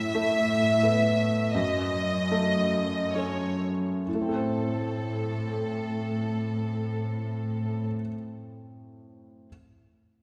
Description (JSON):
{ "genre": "cinematic", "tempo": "63-89 BPM", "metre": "3/4", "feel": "rubato", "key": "A minor", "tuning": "A4 = 440 Hz", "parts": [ { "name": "clear studio violin section", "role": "melody", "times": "0.0-7.9 s", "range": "A4 to E5", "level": "-32 LUFS", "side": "equal", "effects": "none" }, { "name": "felt-muted upright piano", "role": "accompaniment", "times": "0.0-9.5 s", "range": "F#2 to C5", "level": "-34 LUFS", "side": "equal", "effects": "none" }, { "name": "rich studio cello section", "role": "bass", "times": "0.0-7.9 s", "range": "F#2 to A2", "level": "-32 LUFS", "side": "equal", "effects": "none" } ], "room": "wet concert hall reverb, RT60 1.8 s", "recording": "recorded in a church or concert hall", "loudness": "-27 LUFS", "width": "mono", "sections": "0.0-4.1 A section; 4.1-9.5 B section", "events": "slowing down 0.0-4.1", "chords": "0.0 Asus2; 1.5 F#m; 4.1 Am", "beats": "0.14 0.82 | 1.54 2.31 3.15 | 4.07 4.97 5.85 | 6.75 7.66 8.56" }